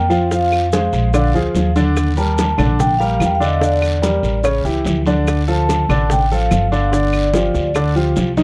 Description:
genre	Afro-Cuban jazz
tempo	145 BPM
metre	4/4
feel	straight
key	G minor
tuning	A4 = 440 Hz
part	vibraphone with medium mallets	melody	0.0-7.7 s	D5 to A5	-22 LUFS	equal	none
part	clear grand piano	accompaniment	0.0-8.4 s	C#3 to F5	-21 LUFS	equal	none
part	upright bass	bass	0.0-8.4 s	G1 to F2	-21 LUFS	equal	none
part	bongos	percussion	0.1-8.4 s	none	-27 LUFS	equal	none
part	guiro	percussion	0.1-8.4 s	none	-36 LUFS	equal	none
part	maracas	percussion	0.1-8.4 s	none	-38 LUFS	equal	none
part	congas	percussion	0.3-8.4 s	none	-25 LUFS	equal	none
part	claves	percussion	0.5-8.0 s	none	-33 LUFS	equal	none
room	little or no reverb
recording	dry, close 1970s-style studio recording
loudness	-16 LUFS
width	mono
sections	0.0-8.4 A section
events	none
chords	0.3 Fm; 1.1 Bb7; 2.0 Ebmaj7; 3.6 Em7b5; 4.5 A7; 5.3 Dm; 6.9 G5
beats	| 0.31 0.73 1.14 1.55 | 1.97 2.38 2.80 3.21 | 3.62 4.04 4.45 4.87 | 5.28 5.69 6.10 6.52 | 6.93 7.34 7.76 8.17

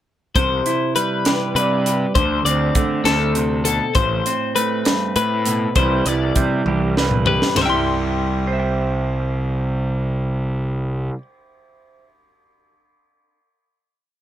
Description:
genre	math rock and midwest emo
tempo	66 BPM (dotted quarters)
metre	6/8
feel	straight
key	C major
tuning	A4 = 440 Hz
part	electric guitar through a small old amp	accompaniment	0.4-12.2 s	G2 to G5	-23 LUFS	right 5 dB	none
part	twelve-string electric guitar	arpeggios	0.4-11.2 s	A4 to C6	-21 LUFS	left 7 dB	none
part	fuzz picked electric bass	bass	0.4-11.1 s	A1 to D3	-22 LUFS	equal	overdrive
part	crisp fusion drum kit	drums	0.4-7.7 s	hi-hat, kick drum, ride cymbal, snare drum, toms	-22 LUFS	right 1 dB	none
room	moderate studio ambience, RT60 0.5 s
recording	none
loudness	-17 LUFS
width	side -11 dB against mid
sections	0.4-7.6 A section; 7.6-11.2 final chord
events	drum fill 6.7-7.6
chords	0.4 Cmaj9; 2.2 D5; 4.0 Am9; 5.8 Cmaj7; 7.6 C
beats	| 0.35 1.25 | 2.15 3.06 | 3.96 4.86 | 5.76 6.67 | 7.57 8.47 | 9.37 10.27

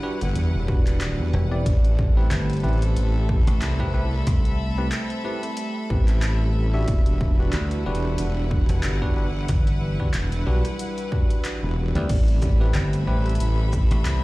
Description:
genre	glitch hop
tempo	92 BPM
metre	4/4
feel	swing 56% on 16ths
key	A dorian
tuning	A4 = 438 Hz
part	warm analog pad	sustained chords	0.0-14.2 s	E3 to F#5	-33 LUFS	right 1 dB	chorus, sidechain pumping
part	bell-like tine electric piano	stabs	0.0-14.2 s	C4 to E5	-31 LUFS	equal	medium stereo tremolo, sidechain pumping, tape echo
part	rich studio string section	texture	0.0-14.2 s	E4 to B5	-35 LUFS	left 3 dB	sidechain pumping
part	wobble bass	bass	0.2-14.2 s	E1 to E2	-22 LUFS	equal	chorus
part	dubstep drum kit	drums	0.2-14.2 s	crash cymbal, handclaps, hi-hat, rim click, shaker	-34 LUFS	equal	none
part	electronic kick drum	drums	0.7-13.9 s	none	-21 LUFS	equal	none
part	dry thumbed slap bass	bass	1.3-14.0 s	E1 to D2	-23 LUFS	equal	tube saturation
room	little or no reverb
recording	played on a big sound system in a bare room, large studio reverb, vinyl crackle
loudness	-20 LUFS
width	side -20 dB against mid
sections	0.0-14.2 A section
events	none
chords	0.0 Em9; 1.7 Am9; 6.9 Em9; 12.1 Am9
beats	0.36 1.01 | 1.66 2.31 2.97 3.62 | 4.27 4.92 5.58 6.23 | 6.88 7.53 8.18 8.84 | 9.49 10.14 10.79 11.45 | 12.10 12.75 13.40 14.05

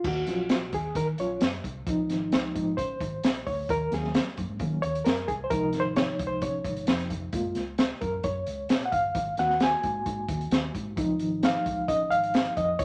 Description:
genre	uptempo 1960s-style soul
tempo	132 BPM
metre	4/4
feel	straight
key	unclear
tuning	A4 = 441 Hz
part	reed electric piano	accompaniment	0.0-12.8 s	C3 to Ab5	-30 LUFS	equal	fast tremolo
part	vintage muted fingered electric bass	bass	0.0-12.8 s	F1 to Eb3	-38 LUFS	equal	none
part	crunchy breakbeat drum kit	drums	0.0-12.8 s	crash cymbal, hi-hat, kick drum, snare drum	-31 LUFS	equal	none
room	moderate studio reverb, RT60 0.6 s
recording	none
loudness	-28 LUFS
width	mono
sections	0.0-12.8 A section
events	reed electric piano solo 0.0-12.8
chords	0.0 Ebm7; 1.9 Dbmaj7; 3.7 Ab7sus4/Eb; 5.5 Dbmaj7; 7.3 Gbmaj7; 9.2 Ab7; 11.0 Dbmaj7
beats	| 0.04 0.50 0.96 1.41 | 1.87 2.32 2.78 3.23 | 3.69 4.14 4.60 5.05 | 5.51 5.97 6.42 6.88 | 7.33 7.79 8.24 8.70 | 9.15 9.61 10.06 10.52 | 10.97 11.43 11.88 12.34 | 12.79

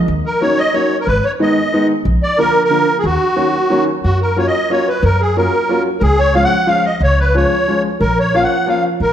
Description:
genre	musette waltz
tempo	182 BPM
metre	3/4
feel	straight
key	Eb minor, F# major from 4.0 s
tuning	A4 = 441 Hz
part	upright bass	bass	0.1-9.1 s	Ab1 to F#2	-16 LUFS	equal	none
part	musette accordion	melody	0.3-9.1 s	Gb4 to F#5	-15 LUFS	equal	none
part	clear upright piano	accompaniment	0.4-8.8 s	D3 to E#4	-18 LUFS	equal	none
room	wet recital hall reverb, RT60 1.4 s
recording	none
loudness	-12 LUFS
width	side -10 dB against mid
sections	0.0-4.0 A section; 4.0-9.1 B section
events	none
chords	0.1 Ebm7; 1.1 Abm; 2.1 Bb; 3.0 Ebm7; 4.0 F#maj7; 6.0 C#; 8.0 A#m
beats	| 0.09 0.42 0.74 | 1.07 1.40 1.73 | 2.06 2.39 2.71 | 3.04 3.37 3.71 | 4.04 4.37 4.70 | 5.03 5.36 5.69 | 6.02 6.35 6.68 | 7.01 7.34 7.67 | 8.01 8.34 8.68 | 9.01

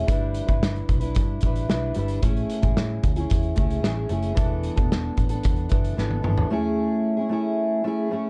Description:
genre	indie pop, bedroom pop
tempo	112 BPM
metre	4/4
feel	straight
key	A major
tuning	A4 = 439 Hz
part	fingerpicked steel-string acoustic guitar	accompaniment	0.0-8.3 s	E3 to B4	-28 LUFS	equal	subtle chorus, warbly pitch drift
part	vintage muted picked electric bass	bass	0.0-6.5 s	E1 to A2	-30 LUFS	equal	none
part	loose indie drum kit	drums	0.1-6.5 s	hi-hat, kick drum, snare drum, toms	-26 LUFS	equal	vintage 12-bit sampler grit
room	light reverb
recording	dark, warm production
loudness	-24 LUFS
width	mono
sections	0.0-6.5 A section; 6.5-8.3 B section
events	drum fill 6.0-6.5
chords	0.1 G6; 2.2 Amaj7; 4.4 E7sus4; 6.5 Amaj7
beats	| 0.09 0.62 1.16 1.69 | 2.23 2.77 3.30 3.84 | 4.37 4.91 5.44 5.98 | 6.52 7.05 7.59 8.12

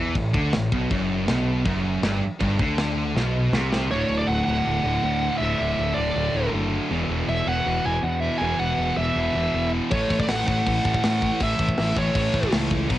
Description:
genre	heavy metal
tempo	160 BPM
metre	4/4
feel	straight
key	unclear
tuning	A4 = 441 Hz
part	heavy high-gain guitar	riff	0.0-13.0 s	D2 to B3	-30 LUFS	right 7 dB	distortion, cassette tape
part	high-gain distorted guitar	riff	0.0-13.0 s	D2 to B3	-31 LUFS	left 8 dB	distortion, cassette tape
part	thick fuzz guitar	riff	0.0-13.0 s	D2 to B3	-27 LUFS	equal	distortion, cassette tape
part	growling fingered electric bass	bass	0.0-13.0 s	D1 to A2	-27 LUFS	equal	overdrive
part	tight metal drum kit	drums	0.2-3.8, 9.9-13.0 s	china cymbal, crash cymbal, kick drum, snare drum	-26 LUFS	equal	none
part	high-gain lead guitar	melody	3.9-12.5 s	C#5 to G#5	-26 LUFS	right 1 dB	distortion, cassette tape
room	little or no reverb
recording	home recording on cassette, nothing above 10.3 kHz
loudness	-21 LUFS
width	side -14 dB against mid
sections	0.0-3.9 A section; 3.9-13.0 B section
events	drum fill 3.2-3.9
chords	0.0 A5; 0.9 Gmaj7/F#; 3.9 D; 6.9 E5; 9.9 A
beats	0.15 0.53 | 0.90 1.28 1.65 2.03 | 2.40 2.78 3.15 3.53 | 3.90 4.28 4.65 5.03 | 5.41 5.78 6.16 6.53 | 6.91 7.28 7.66 8.04 | 8.41 8.79 9.16 9.54 | 9.91 10.29 10.66 11.04 | 11.41 11.79 12.16 12.54 | 12.91

